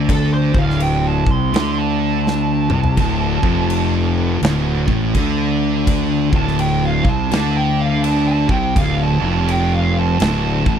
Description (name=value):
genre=stoner and doom metal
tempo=83 BPM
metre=4/4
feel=swing 63% on 8ths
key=D minor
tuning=A4 = 437 Hz
part: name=thick fuzz guitar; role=riff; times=0.0-10.8 s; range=D2 to D3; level=-22 LUFS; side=left 10 dB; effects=distortion
part: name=thick fuzz guitar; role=riff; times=0.0-10.8 s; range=D2 to D3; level=-22 LUFS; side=right 10 dB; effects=distortion
part: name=fuzz fingered electric bass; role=bass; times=0.0-10.8 s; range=D1 to D2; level=-20 LUFS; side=equal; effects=overdrive
part: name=fuzz lead guitar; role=melody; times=0.1-10.8 s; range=A4 to C6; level=-23 LUFS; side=right 4 dB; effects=wah, distortion, tape echo
part: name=big rock drum kit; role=drums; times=0.1-10.8 s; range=crash cymbal, kick drum, snare drum, toms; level=-22 LUFS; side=equal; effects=none
part: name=thick fuzz guitar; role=riff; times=3.0-10.8 s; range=D2 to D3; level=-25 LUFS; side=equal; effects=distortion
room=little or no reverb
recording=dry, close 1970s-style studio recording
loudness=-14 LUFS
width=side -8 dB against mid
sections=0.0-10.8 A section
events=lead electric guitar solo 0.0-10.8; drum fill 2.3-3.0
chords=0.0 Dm